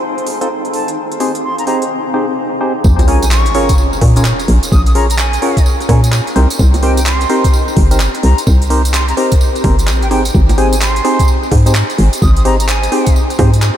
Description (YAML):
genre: UK garage, two-step garage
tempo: 128 BPM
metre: 4/4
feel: swing 63% on 16ths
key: Bb dorian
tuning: A4 = 440 Hz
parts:
  - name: silver concert flute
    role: melody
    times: 0.0-13.2 s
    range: G5 to Eb6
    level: -22 LUFS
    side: equal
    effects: ping-pong delay
  - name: granular cloud pad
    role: texture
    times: 0.0-1.9 s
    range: C4 to F5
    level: -26 LUFS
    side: equal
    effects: built-in reverb, sidechain pumping
  - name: garage drum kit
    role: drums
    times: 0.2-13.7 s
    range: bongos, handclaps, hi-hat, rim click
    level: -21 LUFS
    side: right 1 dB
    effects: none
  - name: percussive organ stab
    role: stabs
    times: 0.4-13.5 s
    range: C4 to Db5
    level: -16 LUFS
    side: equal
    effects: chorus, ping-pong delay
  - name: hollow knocking FM bass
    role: bass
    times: 2.8-13.7 s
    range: G1 to Bb2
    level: -12 LUFS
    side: equal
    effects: none
  - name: electronic kick drum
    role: drums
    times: 2.8-13.5 s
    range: none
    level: -12 LUFS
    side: equal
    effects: none
  - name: tambourine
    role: percussion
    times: 2.8-13.7 s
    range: none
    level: -26 LUFS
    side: right 3 dB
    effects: none
  - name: sub drop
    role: sound effects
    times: 2.8-4.7 s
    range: none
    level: -17 LUFS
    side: equal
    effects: none
room: moderate huge ambient reverb, RT60 8.0 s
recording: dreamy mix soaked in reverb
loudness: -10 LUFS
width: side -11 dB against mid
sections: 0.0-2.8 A section; 2.8-13.8 B section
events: drop 2.8-13.8; impact 2.8-4.7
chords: 0.0 F7; 1.0 Abmaj7; 2.8 Bbm7; 6.4 Cm7; 10.1 Abmaj7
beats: 0.03 0.50 | 0.97 1.44 1.91 2.38 | 2.84 3.31 3.78 4.25 | 4.72 5.19 5.66 6.12 | 6.59 7.06 7.53 8.00 | 8.47 8.94 9.41 9.88 | 10.34 10.81 11.28 11.75 | 12.22 12.69 13.16 13.62